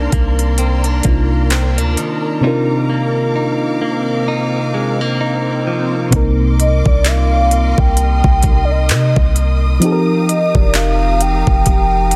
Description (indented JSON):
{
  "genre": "contemporary R&B",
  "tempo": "65 BPM",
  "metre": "4/4",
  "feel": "swing 58% on 16ths",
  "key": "C minor",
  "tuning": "A4 = 436 Hz",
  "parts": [
    { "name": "mellow FM electric piano", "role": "accompaniment", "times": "0.0-12.2 s", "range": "C3 to Bb4", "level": "-21 LUFS", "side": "equal", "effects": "chorus" },
    { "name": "warm studio string section", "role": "sustained chords", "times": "0.0-12.2 s", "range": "C4 to Eb6", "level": "-27 LUFS", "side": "equal", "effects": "sidechain pumping" },
    { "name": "direct-recorded clean electric guitar", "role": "arpeggios", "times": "0.0-6.7 s", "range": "C3 to G4", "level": "-23 LUFS", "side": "equal", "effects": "tape echo" },
    { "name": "warm 808-style bass", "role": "bass", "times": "0.0-12.2 s", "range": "F1 to C3", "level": "-17 LUFS", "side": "equal", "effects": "none" },
    { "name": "trap drum kit", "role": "drums", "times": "0.1-12.2 s", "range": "handclaps, hi-hat, kick drum", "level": "-18 LUFS", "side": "equal", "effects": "none" },
    { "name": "swell", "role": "sound effects", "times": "5.1-6.1 s", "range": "none", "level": "-31 LUFS", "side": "equal", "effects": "none" },
    { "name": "hollow clarinet-like synth lead", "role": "melody", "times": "6.6-12.2 s", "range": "D5 to G5", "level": "-20 LUFS", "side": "equal", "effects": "chorus, tape echo" }
  ],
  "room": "light reverb, digital ambience",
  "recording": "dense, heavily limited modern master",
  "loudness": "-15 LUFS",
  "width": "mono",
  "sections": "0.0-6.1 A section; 6.1-12.2 B section",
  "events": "none",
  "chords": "0.0 Cm9; 2.4 Cm11; 6.1 Cm9; 9.8 F9sus4"
}